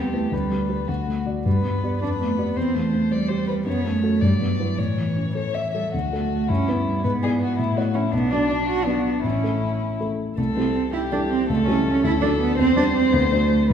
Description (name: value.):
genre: quick classical-period movement for piano trio.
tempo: 108 BPM (dotted quarters).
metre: 6/8.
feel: rubato.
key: G major.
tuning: A4 = 439 Hz.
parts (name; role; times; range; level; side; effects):
dark violin; melody; 0.0-13.7 s; D4 to E5; -28 LUFS; left 6 dB; none.
dark cello; second line; 0.0-13.7 s; E3 to F#4; -23 LUFS; right 4 dB; none.
dark baby grand piano; accompaniment; 0.0-13.7 s; A1 to D5; -24 LUFS; left 2 dB; none.
room: wet scoring stage reverb, RT60 1.7 s.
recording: heard from further back in the room.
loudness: -20 LUFS.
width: side -8 dB against mid.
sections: 0.0-5.9 A section; 5.9-13.7 B section.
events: none.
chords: 0.3 G/D; 0.9 D; 1.5 G; 2.0 G7/F; 2.6 C/E; 3.7 F#m; 4.2 Em/G; 4.8 A; 5.9 D; 6.5 Em/G; 7.0 E7/G#; 7.6 A; 8.1 Bm; 9.2 A; 10.4 Am7/C; 11.5 A7/C#; 12.0 D; 12.6 C/E; 13.1 D7.